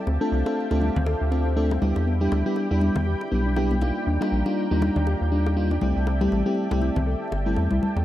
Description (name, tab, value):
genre	deep house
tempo	120 BPM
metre	4/4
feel	swing 57% on 16ths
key	unclear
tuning	A4 = 441 Hz
part	warm analog pad	sustained chords	0.0-8.0 s	C5 to B5	-34 LUFS	right 1 dB	chorus, vintage 12-bit sampler grit
part	mellow FM electric piano	stabs	0.0-8.0 s	G3 to A4	-25 LUFS	equal	chorus, ping-pong delay
part	analog string pad	texture	0.0-8.0 s	G4 to G5	-36 LUFS	equal	ensemble chorus
part	soft round pluck	arpeggios	0.1-7.9 s	B3 to A4	-33 LUFS	left 2 dB	chorus, ping-pong delay
part	rubbery square bass	bass	0.1-8.0 s	G1 to E2	-24 LUFS	equal	none
part	bongos and congas	percussion	0.1-8.0 s	none	-31 LUFS	left 2 dB	none
room	light reverb, digital ambience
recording	vinyl crackle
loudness	-21 LUFS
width	side -13 dB against mid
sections	0.0-8.0 A section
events	none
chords	0.1 Dm7; 2.1 Em7; 4.1 Ebmaj9; 5.8 C6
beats	| 0.07 0.57 1.07 1.57 | 2.07 2.57 3.07 3.57 | 4.07 4.57 5.07 5.57 | 6.07 6.57 7.07 7.57